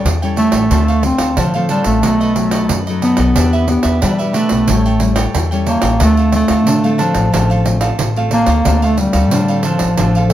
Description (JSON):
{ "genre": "samba and choro", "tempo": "91 BPM", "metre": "4/4", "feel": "straight", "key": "D minor", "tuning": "A4 = 440 Hz", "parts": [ { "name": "mellow bass clarinet", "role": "melody", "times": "0.0-10.3 s", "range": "F3 to C4", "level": "-15 LUFS", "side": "equal", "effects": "none" }, { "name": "cavaquinho", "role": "accompaniment", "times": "0.0-10.3 s", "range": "D4 to G5", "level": "-22 LUFS", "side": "right 3 dB", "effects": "none" }, { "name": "nylon-string guitar", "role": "accompaniment", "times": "0.0-10.3 s", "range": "F#2 to G4", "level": "-22 LUFS", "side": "left 6 dB", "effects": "none" }, { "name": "upright bass", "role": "bass", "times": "0.1-10.3 s", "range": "A1 to E3", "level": "-17 LUFS", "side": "equal", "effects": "none" }, { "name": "pandeiro", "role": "percussion", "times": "0.1-10.3 s", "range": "none", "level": "-21 LUFS", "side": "right 4 dB", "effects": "none" }, { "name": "baroque flute", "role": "second line", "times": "10.3 s", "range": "A4", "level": "-19 LUFS", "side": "left 1 dB", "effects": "none" } ], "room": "light reverb", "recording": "none", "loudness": "-12 LUFS", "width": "side -12 dB against mid", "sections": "0.0-10.3 A section", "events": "none", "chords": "0.0 A7; 0.7 Dm7; 2.0 B7; 3.4 Em7; 4.7 A7; 6.0 Dm7" }